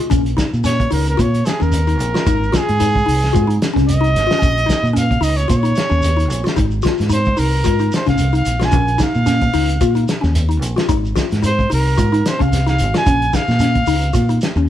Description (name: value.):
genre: afrobeat.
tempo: 111 BPM.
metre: 4/4.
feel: swing 56% on 16ths.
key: Bb minor.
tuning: A4 = 444 Hz.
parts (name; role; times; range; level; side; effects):
mallet-like synth pluck; arpeggios; 0.0-14.7 s; Db4 to F4; -21 LUFS; left 4 dB; chorus, phaser, slapback echo.
warm soul drum kit; drums; 0.0-14.6 s; hi-hat, kick drum, snare drum; -20 LUFS; equal; none.
fingered electric bass; bass; 0.1-14.7 s; Ab1 to Bb2; -17 LUFS; equal; none.
shekere; percussion; 0.1-14.7 s; none; -26 LUFS; right 2 dB; none.
clear trumpet; melody; 0.7-14.4 s; Ab4 to Ab5; -20 LUFS; right 1 dB; none.
room: light reverb.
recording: band playing live in one room.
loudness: -14 LUFS.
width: side -11 dB against mid.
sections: 0.1-14.7 A section.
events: trumpet solo 0.1-14.7.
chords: 0.1 Bbm; 2.3 Ab; 4.4 Bbm; 6.6 Ab; 8.7 Bbm; 10.9 Ab; 13.1 Bbm.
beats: | 0.10 0.64 1.18 1.72 | 2.26 2.80 3.34 3.88 | 4.42 4.96 5.50 6.04 | 6.58 7.12 7.66 8.20 | 8.73 9.28 9.82 10.36 | 10.90 11.44 11.98 12.52 | 13.06 13.61 14.15 14.69.